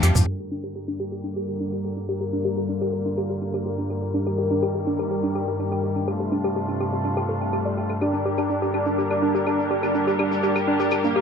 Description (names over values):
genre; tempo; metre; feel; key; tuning
melodic techno; 124 BPM; 4/4; straight; G minor; A4 = 439 Hz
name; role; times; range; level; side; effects
bright symphonic string section; sustained chords; 0.0-11.2 s; C3 to Bb4; -28 LUFS; left 2 dB; none
woody wave-folded pluck; arpeggios; 0.0-11.2 s; D4 to G5; -27 LUFS; equal; chorus, dub echo
analog drone; drone; 0.4-11.2 s; G2 to G3; -29 LUFS; left 1 dB; chorus
deep house drum kit; drums; 0.0-11.0 s; claves, hi-hat, toms; -28 LUFS; equal; tape echo
tube shaker; percussion; 0.2-0.3, 8.0-11.1 s; none; -36 LUFS; left 5 dB; none
soft supersaw; melody; 8.0-11.2 s; Bb3 to D4; -24 LUFS; right 1 dB; dub echo
room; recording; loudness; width
wet spring reverb, RT60 1.3 s, digital ambience; echo-heavy mix, low-pass filter; -22 LUFS; side -6 dB against mid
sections
0.3-11.2 A section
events
drum fill 0.0; filter sweep on synth pluck 0.3-11.2; filter sweep 0.3-11.2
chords
0.3 Gm; 4.1 Eb; 6.1 Fadd9; 8.0 Gm